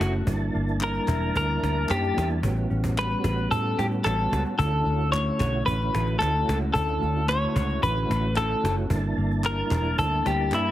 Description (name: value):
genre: indie pop, bedroom pop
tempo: 111 BPM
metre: 4/4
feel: straight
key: D major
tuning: A4 = 440 Hz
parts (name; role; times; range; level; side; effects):
- clean electric guitar; melody; 0.0-10.7 s; E4 to C#5; -27 LUFS; left 1 dB; analog chorus, tape echo
- mellow electric guitar; accompaniment; 0.0-10.7 s; G2 to F#4; -32 LUFS; left 3 dB; analog chorus, vibrato effect
- mellow tonewheel organ; accompaniment; 0.0-10.7 s; G3 to A5; -32 LUFS; right 4 dB; chorus vibrato, fast rotary speaker, cassette tape
- vintage muted fingered electric bass; bass; 0.0-10.7 s; E1 to A2; -27 LUFS; equal; none
- cajon; drums; 0.0-10.7 s; none; -33 LUFS; equal; none
- group handclap; percussion; 0.8-10.6 s; none; -40 LUFS; left 4 dB; none
room: moderate spring reverb, RT60 1.6 s, small room ambience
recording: heavily compressed radio sound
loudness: -22 LUFS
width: side -13 dB against mid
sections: 0.0-10.7 A section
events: none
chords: 0.3 Gm6; 2.4 A13; 4.6 Dmaj7; 8.9 Gm6